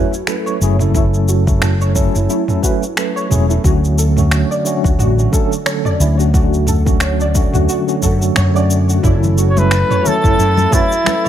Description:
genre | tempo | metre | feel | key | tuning
sunset chillout | 89 BPM | 4/4 | swing 56% on 16ths | F# minor | A4 = 442 Hz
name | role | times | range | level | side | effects
tine electric piano | accompaniment | 0.0-11.3 s | D3 to B4 | -19 LUFS | moving between left 5 dB and right 5 dB | medium stereo tremolo, auto-pan, ping-pong delay
soft round pluck | arpeggios | 0.0-11.3 s | E4 to D5 | -22 LUFS | right 4 dB | ensemble chorus, ping-pong delay
deep house drum kit | drums | 0.1-11.3 s | cabasa, finger snaps, toms | -20 LUFS | equal | small room ambience
mellow fretless electric bass | bass | 0.6-10.6 s | E1 to F#2 | -14 LUFS | equal | none
electronic kick drum | drums | 0.9-10.9 s | none | -16 LUFS | equal | small room ambience
twinkling granular texture | texture | 9.8-11.3 s | A6 | -27 LUFS | right 3 dB | built-in reverb
congas | percussion | 9.2-11.3 s | none | -23 LUFS | left 4 dB | none
warm flugelhorn | melody | 9.5-11.3 s | E4 to C#5 | -15 LUFS | equal | none
room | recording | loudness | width
light reverb | none | -12 LUFS | side -10 dB against mid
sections
0.0-11.3 A section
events
none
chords
0.0 F#m7; 3.6 Dmaj7; 9.0 F#m7

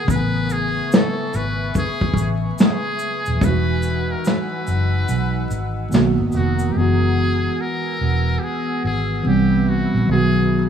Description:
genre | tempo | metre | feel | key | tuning
lo-fi hip hop | 72 BPM | 4/4 | swing 64% on 16ths | unclear | A4 = 440 Hz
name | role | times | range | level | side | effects
trumpet with metal mute | melody | 0.0-10.7 s | F#4 to B4 | -26 LUFS | left 1 dB | tape echo
mellow tine electric piano | accompaniment | 0.0-10.7 s | C#3 to G#5 | -22 LUFS | equal | medium stereo tremolo, cassette tape
warbly tape-like pad | sustained chords | 0.0-10.7 s | B3 to E6 | -30 LUFS | left 2 dB | chorus, built-in reverb
vintage muted fingered electric bass | bass | 0.1-10.7 s | D#1 to C2 | -20 LUFS | right 1 dB | none
vintage brush drum kit | drums | 0.1-6.6 s | hi-hat, kick drum, snare drum | -18 LUFS | equal | none
tube shaker | percussion | 0.1-6.7 s | none | -41 LUFS | left 1 dB | none
room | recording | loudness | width
light reverb, studio reverb | rough home demo mix, vinyl crackle, small room ambience | -17 LUFS | side -8 dB against mid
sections
0.0-6.7 A section; 6.7-10.7 B section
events
kick muted 5.1-6.7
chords
0.1 Amaj9; 3.4 Emaj9; 5.9 Bmaj7; 6.7 F#9sus4; 9.2 Cmaj7; 10.1 Bmaj7

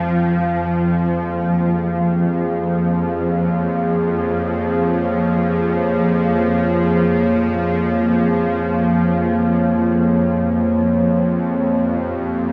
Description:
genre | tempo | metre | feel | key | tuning
dark ambient drone | free time | none | none | unclear | A4 = 436 Hz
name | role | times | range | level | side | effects
dark analog pad | sustained chords | 0.0-12.5 s | F3 to F5 | -21 LUFS | equal | chorus, phaser, shimmer reverb
bowed-like drone | drone | 0.0-12.5 s | F2 to F3 | -21 LUFS | equal | built-in reverb
bronze singing bowl | texture | 0.0-12.5 s | none | barely audible | none | none
room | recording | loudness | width
wet cathedral reverb, RT60 5.7 s | cassette tape | -18 LUFS | mono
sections
0.0-12.5 A section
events
none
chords
0.1 Bbm7/F

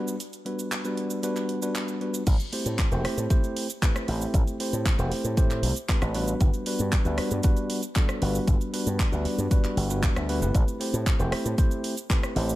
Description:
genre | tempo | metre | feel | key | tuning
nu-disco, nu disco | 116 BPM | 4/4 | straight | A dorian | A4 = 440 Hz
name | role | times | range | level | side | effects
tine electric piano | accompaniment | 0.0-12.6 s | G3 to C5 | -29 LUFS | equal | vintage 12-bit sampler grit, sidechain pumping, tape echo
house drum kit | drums | 0.1-12.6 s | crash cymbal, handclaps, hi-hat, rim click, shaker | -33 LUFS | right 1 dB | none
slap bass with an envelope filter | bass | 2.3-12.5 s | E1 to A2 | -28 LUFS | equal | sidechain pumping
electronic kick drum | drums | 2.3-12.2 s | none | -23 LUFS | equal | none
room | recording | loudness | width
little or no reverb | none | -23 LUFS | side -16 dB against mid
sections
0.0-2.3 A section; 2.3-12.6 B section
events
drop 2.3-12.6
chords
0.0 Gmaj7; 2.3 Am7; 6.4 Gmaj7; 10.5 Am7

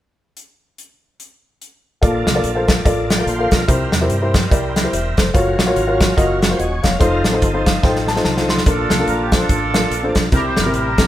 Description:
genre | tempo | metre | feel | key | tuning
uptempo gospel | 145 BPM | 4/4 | swing 59% on 8ths | Bb major | A4 = 440 Hz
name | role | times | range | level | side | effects
natural country drum kit | drums | 0.4-11.1 s | hi-hat, kick drum, snare drum | -17 LUFS | equal | none
dark upright piano | accompaniment | 2.0-11.1 s | Bb2 to C6 | -19 LUFS | left 1 dB | none
bright tonewheel organ | sustained chords | 2.0-11.1 s | F3 to G5 | -26 LUFS | right 2 dB | slow rotary speaker, overdrive, chorus vibrato
fingered electric bass | bass | 2.0-11.1 s | Eb1 to G2 | -23 LUFS | equal | none
clear horn section | melody | 8.7-11.1 s | D4 to C5 | -21 LUFS | right 2 dB | none
room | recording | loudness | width
moderate stone room reverb, RT60 1.0 s | band playing live in one room | -14 LUFS | side -13 dB against mid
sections
0.4-2.0 A section; 2.0-8.7 B section; 8.7-11.1 C section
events
upright piano fill 7.4-8.7; drum fill 7.8-8.7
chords
0.4 N.C.; 2.0 Bbmaj7; 3.7 C7; 5.3 Gbmaj7; 7.0 F7; 8.7 Bbmaj7; 10.3 C7

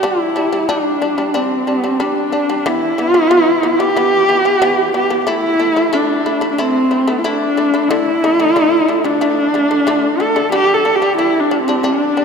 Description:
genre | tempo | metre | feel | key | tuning
mongolian traditional, Mongolian folk | 91 BPM | 4/4 | straight | G zhi mode | A4 = 440 Hz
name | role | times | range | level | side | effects
dark horsehead fiddle | melody | 0.0-12.2 s | C4 to A4 | -13 LUFS | equal | none
shamisen | arpeggios | 0.0-12.2 s | D3 to E4 | -19 LUFS | left 2 dB | none
room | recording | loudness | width
wet cathedral reverb, RT60 4.6 s | in a vast, echoing space | -12 LUFS | side -6 dB against mid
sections
0.0-12.2 A section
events
none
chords
0.0 G5; 2.6 E5; 5.3 A5; 7.9 D5; 10.5 G5

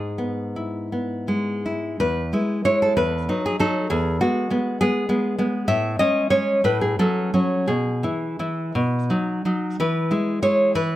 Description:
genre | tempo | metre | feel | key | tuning
romantic piece for solo classical guitar | 53-69 BPM (dotted quarters) | 6/8 | rubato | E major | A4 = 436 Hz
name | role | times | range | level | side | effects
nylon-string guitar | solo | 0.0-11.0 s | E2 to E5 | -20 LUFS | equal | none
room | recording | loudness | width
light reverb | close, detailed microphones | -20 LUFS | side -14 dB against mid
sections
0.0-2.0 A section; 2.0-11.0 A section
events
none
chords
0.0 E/G#; 2.0 E; 3.0 Emaj9; 3.9 E; 5.7 Amaj7; 6.6 F#m/A; 7.7 E/B; 8.8 B; 9.8 E

